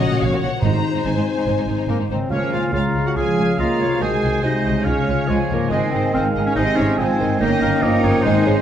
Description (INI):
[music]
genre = classical, dramatic, fast romantic movement for symphony orchestra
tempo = 142 BPM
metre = 4/4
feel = rubato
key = Db major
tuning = A4 = 440 Hz
[part]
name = rich symphonic violin section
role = melody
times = 0.0-8.5 s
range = C5 to Bb5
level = -34 LUFS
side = left 4 dB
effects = none
[part]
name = rich symphonic violin section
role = second line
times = 0.0-8.6 s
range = Eb4 to Ab5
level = -28 LUFS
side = equal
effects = none
[part]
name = rich symphonic viola section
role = accompaniment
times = 0.0-8.6 s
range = Ab3 to Eb5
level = -30 LUFS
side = right 1 dB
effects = none
[part]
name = dark French horn section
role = sustained chords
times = 0.0-8.6 s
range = Ab3 to Gb4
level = -26 LUFS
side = left 3 dB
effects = none
[part]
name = concert harp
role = arpeggios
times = 0.0-8.6 s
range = G2 to Gb5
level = -26 LUFS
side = left 7 dB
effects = none
[part]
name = rich symphonic cello section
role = bass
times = 0.0-8.6 s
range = Ab2 to Eb4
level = -26 LUFS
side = right 3 dB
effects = none
[part]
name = warm symphonic double bass section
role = bass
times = 0.0-8.6 s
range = G1 to Db2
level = -25 LUFS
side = right 4 dB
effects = none
[part]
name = timpani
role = percussion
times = 0.6-2.9, 8.2-8.6 s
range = Ab2 to Db3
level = -27 LUFS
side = equal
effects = none
[part]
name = bright clarinet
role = second line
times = 1.9-8.6 s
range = Ab3 to Ab4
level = -23 LUFS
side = equal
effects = none
[part]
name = clear oboe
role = second line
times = 2.3-8.6 s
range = C5 to Ab5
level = -27 LUFS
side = right 3 dB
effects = none
[part]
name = mellow flute section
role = second line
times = 2.3-8.6 s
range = G5 to Bb5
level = -29 LUFS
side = right 1 dB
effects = none
[part]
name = dark bassoon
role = accompaniment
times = 2.3-8.6 s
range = C3 to F3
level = -26 LUFS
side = right 2 dB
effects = none
[sound]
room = moderate scoring stage reverb, RT60 1.8 s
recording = none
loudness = -16 LUFS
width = side -9 dB against mid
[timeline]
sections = 0.0-2.3 A section; 2.3-8.6 B section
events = none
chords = 0.0 Gb/Bb; 0.6 Ab; 2.3 Db; 4.0 Ab7/C; 4.9 Db; 5.7 Ab; 7.4 Eb7/G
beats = 0.21 | 0.63 1.05 1.47 1.89 | 2.31 2.74 3.17 3.60 | 4.02 4.45 4.87 5.30 | 5.72 6.15 6.57 7.00 | 7.41 7.83 8.26